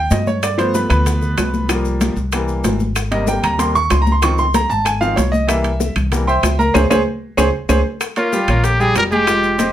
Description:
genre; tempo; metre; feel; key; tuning
latin, salsa; 190 BPM; 4/4; straight; unclear; A4 = 440 Hz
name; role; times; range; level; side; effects
bright upright piano; accompaniment; 0.0-9.7 s; C3 to Db6; -18 LUFS; right 1 dB; none
upright bass; bass; 0.0-9.7 s; F1 to G2; -19 LUFS; equal; none
bongos; percussion; 0.1-9.7 s; none; -29 LUFS; left 7 dB; none
congas; percussion; 0.1-9.7 s; none; -23 LUFS; left 2 dB; none
maracas; percussion; 0.1-9.7 s; none; -32 LUFS; left 8 dB; none
timbales; percussion; 0.1-9.7 s; none; -24 LUFS; right 5 dB; none
claves; percussion; 0.4-9.4 s; none; -27 LUFS; left 9 dB; none
bright trumpet; melody; 8.2-9.7 s; F4 to Bb4; -16 LUFS; equal; plate reverb
room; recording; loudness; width
moderate studio ambience, RT60 0.4 s; none; -14 LUFS; side -11 dB against mid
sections
0.0-8.0 A section; 8.0-9.7 B section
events
upright piano solo 0.0-8.0; band accent 6.7-8.0; drum fill 7.1-8.0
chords
0.4 G7; 1.7 C7sus4; 2.3 C7; 3.0 Abmaj7; 4.2 Dbmaj7; 5.5 C7; 6.7 Db5; 8.0 Bbm6

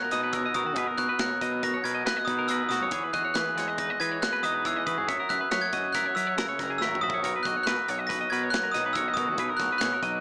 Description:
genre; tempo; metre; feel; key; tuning
math rock and midwest emo; 139 BPM; 5/4; straight; B major; A4 = 441 Hz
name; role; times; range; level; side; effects
glockenspiel with brass mallets; melody; 0.0-10.2 s; D#6 to A#6; -27 LUFS; equal; none
twangy electric guitar; accompaniment; 0.0-10.2 s; B2 to E5; -33 LUFS; equal; none
clean electric guitar; arpeggios; 0.0-10.2 s; F#4 to D#5; -33 LUFS; left 1 dB; analog delay
fuzz picked electric bass; bass; 0.1-10.2 s; F#1 to F#3; -35 LUFS; equal; overdrive
modern studio drum kit; drums; 0.1-10.1 s; hi-hat, kick drum, snare drum, toms; -35 LUFS; equal; none
room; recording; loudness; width
light reverb; small speaker sound; -24 LUFS; side -34 dB against mid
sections
0.0-10.2 A section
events
drum fill 6.8-7.2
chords
0.0 Bmaj9; 2.9 Emaj9; 5.1 F#13; 7.2 Bmaj9

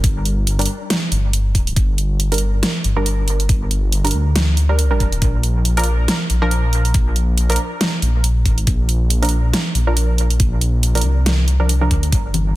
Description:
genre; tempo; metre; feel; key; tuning
deep dubstep; 139 BPM; 4/4; swing 56% on 16ths, half-time; unclear; A4 = 440 Hz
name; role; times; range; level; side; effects
filtered dub chord stab; stabs; 0.0-12.0 s; F3 to Bb4; -24 LUFS; right 2 dB; chorus, dub echo
dark detuned saw bass; bass; 0.0-12.6 s; G1 to D2; -16 LUFS; equal; none
dubstep drum kit; drums; 0.0-12.4 s; hi-hat, snare drum; -21 LUFS; right 1 dB; overdrive
electronic kick drum; drums; 0.0-12.2 s; none; -17 LUFS; equal; overdrive
congas; percussion; 12.3-12.4 s; none; -21 LUFS; left 4 dB; none
room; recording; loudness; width
digital ambience; dense, heavily limited modern master; -15 LUFS; side -17 dB against mid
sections
0.0-12.6 A section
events
none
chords
0.0 Gm; 5.2 Bb

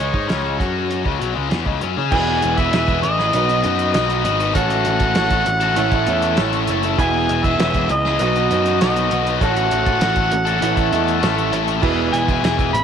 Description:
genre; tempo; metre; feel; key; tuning
classic rock; 99 BPM; 4/4; straight; E major; A4 = 438 Hz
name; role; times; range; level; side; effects
mellow harmonica; melody; 0.0-12.8 s; C#5 to B5; -21 LUFS; equal; none
picked swing-style acoustic guitar; accompaniment; 0.0-12.8 s; E2 to G#4; -27 LUFS; right 13 dB; none
tight distorted guitar; riff; 0.0-12.8 s; B2 to B4; -21 LUFS; left 11 dB; distortion
fuzz picked electric bass; bass; 0.0-12.8 s; E1 to C#3; -23 LUFS; right 1 dB; overdrive
cloth-damped thuddy drum kit; drums; 0.1-12.8 s; crash cymbal, hi-hat, kick drum, snare drum; -23 LUFS; right 1 dB; none
clear concert grand piano; accompaniment; 2.1-12.8 s; D#4 to E5; -27 LUFS; right 11 dB; none
bright tonewheel organ; sustained chords; 2.1-12.8 s; B3 to G#5; -31 LUFS; right 1 dB; none
room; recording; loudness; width
light reverb, small room ambience; 1960s-style stereo with parts hard left and right; -16 LUFS; side -7 dB against mid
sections
0.0-2.1 A section; 2.1-12.8 B section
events
none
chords
0.0 C#5; 2.1 E; 3.3 B; 4.6 F#m/A; 5.8 A; 7.0 E; 8.2 B; 9.4 F#m/A; 10.6 A; 11.8 E

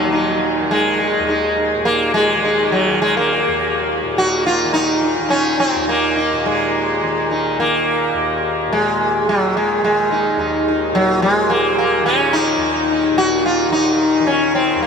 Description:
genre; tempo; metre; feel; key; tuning
indian classical, Hindustani; 106 BPM; 4/4; straight; Eb raga bhimpalasi; A4 = 441 Hz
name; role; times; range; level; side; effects
sitar; melody; 0.0-14.9 s; Gb3 to Gb4; -15 LUFS; equal; analog delay
tanpura; drone; 0.0-14.9 s; Eb2 to Eb3; -22 LUFS; equal; none
room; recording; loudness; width
wet huge ambient reverb, RT60 7.9 s; dreamy mix soaked in reverb; -14 LUFS; side -6 dB against mid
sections
0.0-6.4 A section; 6.4-14.9 B section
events
speeding up 0.0-14.9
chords
none

